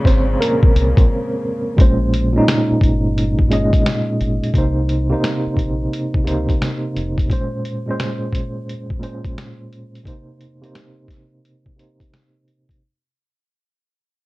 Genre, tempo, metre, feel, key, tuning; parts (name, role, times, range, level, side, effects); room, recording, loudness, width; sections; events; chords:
lo-fi hip hop; 87 BPM; 4/4; swing 66% on 16ths; Bb dorian; A4 = 439 Hz
tine electric piano; accompaniment; 0.0-12.8 s; Bb2 to Eb5; -19 LUFS; right 1 dB; overdrive, fast tremolo, cassette tape, low-pass filter
dark studio string section; sustained chords; 0.0-1.7 s; Bb2 to Bb3; -28 LUFS; left 3 dB
lo-fi sampler-style drum kit; drums; 0.0-12.8 s; finger snaps, hi-hat, kick drum, snare drum; -16 LUFS; equal
deep dub fingered electric bass; bass; 0.1-7.3 s; F1 to Db2; -21 LUFS; equal
moderate small room reverb, RT60 0.6 s; cassette tape; -15 LUFS; side -20 dB against mid
0.0-1.8 A section; 1.8-12.8 B section
tine electric piano solo 0.0-1.8; break 1.1-1.8; fade-out 1.8-12.8; filter sweep on tine electric piano 1.8-12.8
0.0 Bbm9; 4.5 Cm7; 7.3 Bbm9; 10.1 Cm7